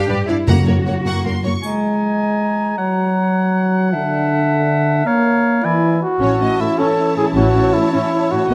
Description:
cinematic, heroic adventure film score; 105 BPM (dotted quarters); 6/8; straight; A4 = 443 Hz
clear symphonic violin section; melody; 0.0-1.6, 6.2-8.5 s; Db5 to Db6; -33 LUFS; equal
clear symphonic violin section; second line; 0.0-1.5, 6.2-8.5 s; Bb4 to Gb5; -28 LUFS; equal
rich symphonic viola section; accompaniment; 0.0-1.5, 6.2-8.5 s; A3 to E4; -25 LUFS; equal
rich studio cello section; bass; 0.0-1.4, 6.2-8.5 s; A2 to G4; -27 LUFS; equal
rich symphonic double bass section; bass; 0.1-1.5, 6.2-8.5 s; A1 to G2; -23 LUFS; equal
timpani; percussion; 0.5-1.0 s; Gb2; -22 LUFS; equal
bright oboe; second line; 1.6-6.0 s; F5 to G#5; -27 LUFS; equal
clear clarinet; second line; 1.6-6.0 s; Db5 to E5; -25 LUFS; equal
mellow hollow concert flute; second line; 1.6-6.0 s; A5 to B5; -26 LUFS; equal
dark French horn section; sustained chords; 1.6-8.5 s; D3 to D#4; -21 LUFS; equal
triangle; percussion; 1.6-2.4 s; -49 LUFS; equal
warm trumpet; stabs; 5.6-8.5 s; E4 to A4; -19 LUFS; equal
moderate scoring stage reverb, RT60 2.1 s; close, detailed microphones; -17 LUFS; mono
0.0-1.6 A section; 1.6-6.2 B section; 6.2-8.5 C section
0.5 Gb; 1.6 Absus2; 2.8 Gb; 3.9 Dadd9; 5.1 Bbm; 5.6 E7; 6.2 A

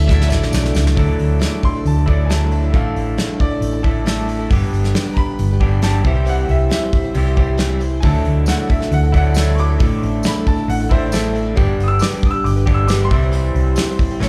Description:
folk rock and heartland rock; 136 BPM; 4/4; straight; D major; A4 = 439 Hz
dark fiddle; melody; 0.0-0.7 s; D5 to E5; -31 LUFS; equal; slapback echo
overdriven reed electric piano; accompaniment; 0.0-0.9, 8.0-14.3 s; F#4 to G5; -34 LUFS; equal
picked acoustic archtop guitar; accompaniment; 0.0-14.3 s; A2 to C#5; -31 LUFS; equal; slapback echo
electric guitar through a small old amp; riff; 0.0-14.3 s; G2 to A4; -25 LUFS; equal; slapback echo
hollow-body short-scale fingered electric bass; bass; 0.0-14.3 s; G1 to D2; -19 LUFS; equal
soft brush drum kit; drums; 0.1-14.3 s; hi-hat, kick drum, snare drum; -21 LUFS; equal
tambourine; percussion; 0.1-0.9, 8.5-13.9 s; -36 LUFS; equal
bright upright piano; second line; 1.6-14.3 s; C5 to E6; -28 LUFS; equal
studio reverb; live gig heard through the venue's PA, club reverb; -17 LUFS; mono
1.0-14.3 A section
drum fill 0.1-1.0; upright piano solo 1.0-14.3
0.0 Dadd9; 2.7 Asus4; 4.5 G; 6.0 C; 8.0 Dadd9; 9.8 Asus4; 11.6 G; 13.1 C

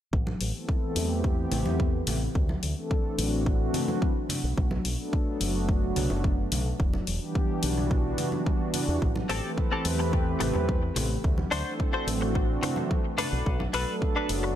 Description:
nu-disco, nu disco; 108 BPM; 4/4; straight; A dorian; A4 = 440 Hz
warm analog pad; accompaniment; 0.1-14.6 s; E3 to B4; -30 LUFS; equal; chorus, sidechain pumping, tape echo
fingered electric bass with an envelope filter; bass; 0.1-14.6 s; E1 to E2; -30 LUFS; equal; tube saturation, sidechain pumping
electronic kick drum; drums; 0.1-14.1 s; -27 LUFS; equal
congas; percussion; 0.3-14.4 s; -36 LUFS; equal
electronic hi-hat; drums; 0.4-14.4 s; -35 LUFS; left 5 dB
direct-recorded clean electric guitar; riff; 9.3-14.5 s; C4 to C5; -31 LUFS; left 3 dB; analog chorus, tape echo
little or no reverb; -25 LUFS; side -11 dB against mid
0.1-14.6 A section
filter sweep on fingered electric bass 0.1-14.6; filter sweep on analog synth pad 0.1-14.6
0.1 Am7; 2.4 D7; 4.3 Bm7; 6.8 Em7; 9.0 Am7; 11.2 D7; 13.2 Bm7

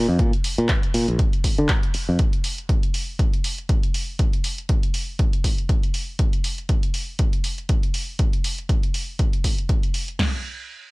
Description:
filtered disco house; 120 BPM; 4/4; swing 57% on 16ths; A4 = 441 Hz
modern bright fingered electric bass; bass; 0.0-2.2 s; Bb1 to D3; -19 LUFS; equal; tube saturation, sidechain pumping, low-pass filter
punchy analog drum machine; drums; 0.2-10.3 s; crash cymbal, kick drum, snare drum, toms; -21 LUFS; equal
punchy analog drum machine; drums; 0.2-10.2 s; handclaps, hi-hat; -29 LUFS; right 1 dB; sidechain pumping on hats
little or no reverb; dry, gritty hardware recording; -20 LUFS; side -24 dB against mid
0.0-10.2 A section

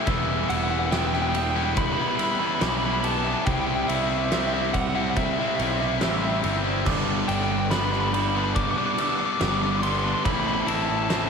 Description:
post-rock; 71 BPM; 4/4; straight; G major; A4 = 439 Hz
glockenspiel with hard plastic mallets; arpeggios; 0.0-11.3 s; D6 to G6; -36 LUFS; right 2 dB; tape echo
twelve-string electric guitar; arpeggios; 0.0-11.3 s; G2 to E4; -35 LUFS; left 2 dB
biting overdriven guitar; riff; 0.0-11.3 s; G2 to E4; -29 LUFS; right 12 dB
overdriven electric guitar; riff; 0.0-11.3 s; G2 to E4; -28 LUFS; left 13 dB
fuzz picked electric bass; bass; 0.1-11.3 s; E1 to C2; -29 LUFS; equal; overdrive
oversized low-tuned drum kit; drums; 0.1-11.3 s; crash cymbal, kick drum, ride cymbal, snare drum; -28 LUFS; left 1 dB
lightly driven lead guitar; melody; 0.5-11.3 s; E5 to D6; -28 LUFS; right 1 dB; tape echo
moderate large studio reverb, RT60 1.2 s, studio ambience; -21 LUFS; side -6 dB against mid
0.0-11.3 A section
0.1 Em; 3.5 C; 6.9 G; 10.3 Am

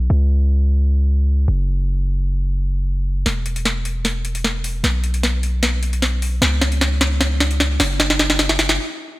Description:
future bass; 152 BPM; 4/4; half-time; A4 = 439 Hz
long sustained 808-style bass; bass; 0.0-8.8 s; E1 to C#2; -18 LUFS; equal
trap drum kit; drums; 3.3-8.8 s; hi-hat, snare drum; -18 LUFS; equal; overdrive, studio reverb
light reverb; -16 LUFS; side -18 dB against mid
0.0-3.3 A section; 3.3-9.2 B section
build-up 3.3-9.2; drum fill 3.3-8.8; stop 8.8-9.2

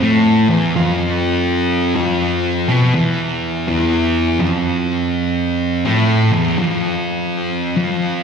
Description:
metal; 82 BPM; 4/4; swing 65% on 8ths; A4 = 441 Hz
thick fuzz guitar; solo; 0.0-8.2 s; E2 to B3; -14 LUFS; equal; distortion
moderate lush hall reverb, RT60 3.0 s; live gig heard through the venue's PA, recital hall reverb; -14 LUFS; side -6 dB against mid
0.0-8.2 A section
0.0 E5

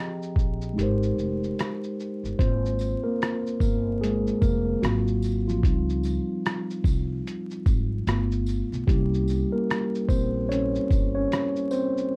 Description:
lo-fi hip hop; 74 BPM; 4/4; swing 60% on 16ths; Ab major; A4 = 440 Hz
mellow tine electric piano; accompaniment; 0.0-12.2 s; F3 to Bb5; -29 LUFS; equal; cassette tape, low-pass filter
lo-fi sampler-style drum kit; drums; 0.2-12.1 s; hi-hat, kick drum, rim click, shaker; -27 LUFS; equal
upright bass; bass; 0.4-11.2 s; F1 to Db2; -30 LUFS; equal
tambourine; percussion; 2.8-11.9 s; -55 LUFS; equal
light reverb; dark, warm production, vinyl crackle; -26 LUFS; mono
0.0-2.4 A section; 2.4-12.2 B section
kick muted 0.8-2.4; tine electric piano solo 2.4-12.2
0.0 Fm9; 2.4 Ab69; 4.8 Ab13; 5.6 Dbmaj9#11; 8.1 G9; 8.9 C7b9

